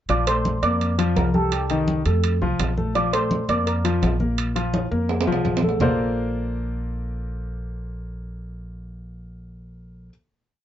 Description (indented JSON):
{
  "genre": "Afro-Cuban jazz",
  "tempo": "168 BPM",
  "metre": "4/4",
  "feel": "straight",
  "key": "Bb major",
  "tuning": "A4 = 440 Hz",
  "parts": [
    { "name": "steel pan", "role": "melody", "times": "0.1-5.4 s", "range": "G4 to D5", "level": "-25 LUFS", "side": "right 2 dB", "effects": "none" },
    { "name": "warm baby grand piano", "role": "accompaniment", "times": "0.1-10.1 s", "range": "Eb3 to D5", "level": "-24 LUFS", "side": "left 3 dB", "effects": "none" },
    { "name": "upright bass", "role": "bass", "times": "0.1-10.1 s", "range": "Bb1 to F2", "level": "-26 LUFS", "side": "equal", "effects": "none" },
    { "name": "congas", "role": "percussion", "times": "0.1-5.9 s", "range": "none", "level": "-26 LUFS", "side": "equal", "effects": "none" },
    { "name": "timbales", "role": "percussion", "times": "0.1-5.9 s", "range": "none", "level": "-29 LUFS", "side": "right 5 dB", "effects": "none" }
  ],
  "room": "moderate booth ambience, RT60 0.2 s",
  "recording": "nothing above 7.6 kHz",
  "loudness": "-20 LUFS",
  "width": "side -11 dB against mid",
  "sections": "0.1-5.8 A section; 5.8-8.7 final chord",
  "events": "drum fill 4.7-5.8",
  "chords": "0.1 Bbmaj9; 1.5 Cm; 2.2 Bb5; 5.8 Bbmaj9",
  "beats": "| 0.10 0.45 0.81 1.17 | 1.53 1.88 2.24 2.60 | 2.96 3.31 3.67 4.03 | 4.38 4.74 5.10 5.45 | 5.81 6.17 6.53 6.88 | 7.24 7.60 7.96 8.31"
}